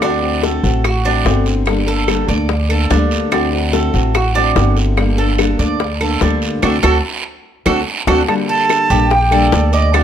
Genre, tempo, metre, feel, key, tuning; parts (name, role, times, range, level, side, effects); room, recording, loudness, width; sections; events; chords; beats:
latin, Cuban son and guajira; 145 BPM; 4/4; straight; G harmonic minor; A4 = 443 Hz
nylon-string guitar; accompaniment; 0.0-10.0 s; D3 to A4; -19 LUFS; left 3 dB
Cuban tres; arpeggios; 0.0-10.0 s; D4 to D5; -19 LUFS; right 3 dB
upright bass; bass; 0.0-10.0 s; G1 to D2; -16 LUFS; equal
bongos; percussion; 0.0-10.0 s; -22 LUFS; left 8 dB
claves; percussion; 0.0-10.0 s; -24 LUFS; right 5 dB
guiro; percussion; 0.0-10.0 s; -26 LUFS; right 6 dB
silver concert flute; melody; 8.3-10.0 s; D5 to A5; -17 LUFS; right 3 dB
light reverb; close, detailed microphones; -12 LUFS; side -9 dB against mid
0.0-8.3 A section; 8.3-10.0 B section
band accent 6.6-8.3; drum fill 7.5-8.3
0.0 D7; 1.7 Gmadd9; 3.3 D7; 5.0 Gmadd9; 6.6 D7; 8.3 Gmadd9
| 0.02 0.43 0.85 1.26 | 1.67 2.08 2.50 2.91 | 3.32 3.73 4.15 4.56 | 4.97 5.39 5.80 6.21 | 6.63 7.04 7.45 7.87 | 8.28 8.70 9.11 9.52 | 9.94